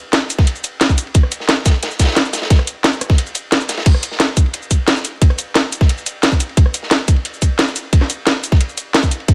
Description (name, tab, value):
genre	drum and bass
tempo	177 BPM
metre	4/4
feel	straight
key	none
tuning	none
part	crunchy breakbeat drum kit	drums	0.1-9.3 s	ride cymbal, snare drum	-27 LUFS	equal	high-pass filter on cymbals, high-pass filter on snare, high-pass filter on room
part	drum and bass drum kit	drums	0.1-9.3 s	crash cymbal, hi-hat, rim click, shaker, snare drum	-19 LUFS	equal	none
part	electronic kick drum	drums	0.4-9.3 s	none	-14 LUFS	equal	none
room	little or no reverb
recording	none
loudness	-16 LUFS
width	mono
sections	0.0-9.3 A section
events	break 3.2-3.9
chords	none